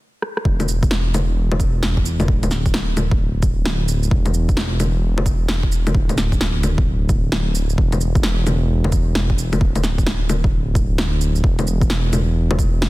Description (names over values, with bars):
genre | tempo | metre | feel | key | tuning
future garage | 131 BPM | 4/4 | swing 64% on 16ths | unclear | A4 = 440 Hz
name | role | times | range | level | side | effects
electronic rim click, bongos, shaker and snare drum | drums | 0.2-12.9 s | none | -23 LUFS | left 1 dB | overdrive, low-pass filter on perc, studio reverb, low-pass filter on snare
dark detuned saw bass | bass | 0.4-12.9 s | D1 to E1 | -19 LUFS | equal | sidechain pumping
electronic kick drum | drums | 0.5-12.7 s | none | -19 LUFS | equal | overdrive, studio reverb
room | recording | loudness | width
digital ambience | dense, heavily limited modern master | -16 LUFS | side -19 dB against mid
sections
0.5-12.9 A section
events
stop 0.0-0.5; drum fill 0.2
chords
none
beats
| 0.45 0.91 1.37 1.82 | 2.28 2.74 3.20 3.66 | 4.11 4.57 5.03 5.49 | 5.95 6.40 6.86 7.32 | 7.78 8.24 8.69 9.15 | 9.61 10.07 10.53 10.98 | 11.44 11.90 12.36 12.82